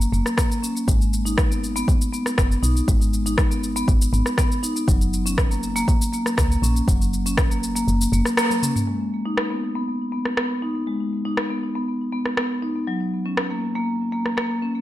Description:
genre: afro house.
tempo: 120 BPM.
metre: 4/4.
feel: straight.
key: G# minor.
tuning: A4 = 440 Hz.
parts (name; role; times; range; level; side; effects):
woody FM bass; bass; 0.0-8.2 s; F#1 to C#2; -23 LUFS; equal; sidechain pumping.
afro-pop drum kit; drums; 0.0-14.5 s; rim click, shaker, toms; -26 LUFS; equal; low-pass filter on perc, low-pass filter on snare, low-pass filter on toms.
marimba with medium mallets; arpeggios; 0.1-14.7 s; F#3 to D#4; -24 LUFS; left 1 dB; sidechain pumping, low-pass filter, ping-pong delay.
electronic kick drum; drums; 0.4-7.5 s; none; -20 LUFS; equal; none.
room: light reverb.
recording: none.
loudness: -19 LUFS.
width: side -14 dB against mid.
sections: 0.0-8.9 A section; 8.9-14.8 B section.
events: kick drops out 7.9-8.9; band accent 8.4; drum fill 8.5-8.9; filter sweep on marimba 8.9-14.8.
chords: 0.0 F#; 0.9 G#m; 4.9 F#; 8.9 G#m (rootless); 12.9 F# (rootless).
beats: 0.38 | 0.88 1.38 1.88 2.38 | 2.88 3.38 3.88 4.38 | 4.88 5.38 5.88 6.38 | 6.88 7.38 7.88 8.38 | 8.88 9.38 9.88 10.38 | 10.88 11.38 11.88 12.38 | 12.88 13.38 13.88 14.38.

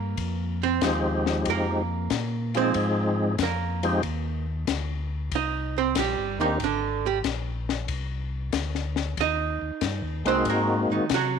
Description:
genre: soul jazz organ trio.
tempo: 93 BPM.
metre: 4/4.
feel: swing 69% on 8ths.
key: C minor.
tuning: A4 = 440 Hz.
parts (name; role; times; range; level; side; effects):
archtop guitar, miked and amplified; accompaniment; 0.0-11.4 s; D3 to Eb5; -27 LUFS; right 12 dB; none.
mellow tonewheel organ; bass; 0.0-11.4 s; G1 to C3; -30 LUFS; left 1 dB; slow rotary speaker, tube saturation.
compact cocktail drum kit; drums; 0.2-11.3 s; hi-hat, kick drum, ride cymbal, snare drum; -32 LUFS; left 11 dB; none.
percussive tonewheel organ; melody; 0.8-11.1 s; Eb3 to Ab4; -26 LUFS; left 2 dB; slow rotary speaker, overdrive, chorus vibrato.
room: light reverb, studio reverb.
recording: 1960s-style stereo with parts hard left and right.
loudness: -24 LUFS.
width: side -6 dB against mid.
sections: 0.0-11.4 A section.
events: hollow-body jazz guitar solo 0.0-11.4.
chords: 0.2 Fm9; 5.3 Cm7; 10.5 Ab7.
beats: | 0.18 0.82 1.46 2.11 | 2.75 3.39 4.03 4.68 | 5.32 5.96 6.60 7.25 | 7.89 8.53 9.17 9.82 | 10.46 11.10.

